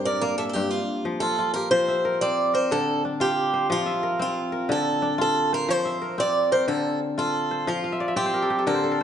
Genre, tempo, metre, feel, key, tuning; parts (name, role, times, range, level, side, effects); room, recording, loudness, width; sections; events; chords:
west african traditional, West African string and xylophone music; 121 BPM (dotted quarters); 12/8; straight; F major; A4 = 440 Hz
kora; arpeggios; 0.0-9.0 s; G2 to F5; -26 LUFS; left 2 dB
picked swing-style acoustic guitar; melody; 0.1-9.0 s; F4 to D5; -23 LUFS; right 2 dB
moderate recital hall reverb, RT60 1.7 s; nothing above 10.5 kHz; -22 LUFS; side -9 dB against mid
0.0-1.7 A section; 1.7-9.0 B section
kora fill 7.8-9.0
0.0 Gm; 0.7 F; 1.7 F5; 2.7 Dm; 3.7 F5; 4.7 Dm; 5.7 F5; 6.7 Dm; 7.7 F5